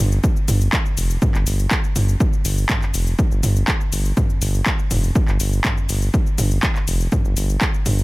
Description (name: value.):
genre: melodic techno.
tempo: 122 BPM.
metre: 4/4.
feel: straight.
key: unclear.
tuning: A4 = 440 Hz.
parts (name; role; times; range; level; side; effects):
round analog bass; bass; 0.0-8.0 s; F1 to G1; -19 LUFS; equal; sidechain pumping.
punchy analog drum machine; drums; 0.1-8.0 s; handclaps, hi-hat, shaker, toms; -22 LUFS; equal; overdrive.
electronic kick drum; drums; 0.2-7.7 s; none; -20 LUFS; equal; overdrive.
room: little or no reverb.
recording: none.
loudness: -17 LUFS.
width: side -22 dB against mid.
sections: 0.0-8.0 A section.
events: none.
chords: none.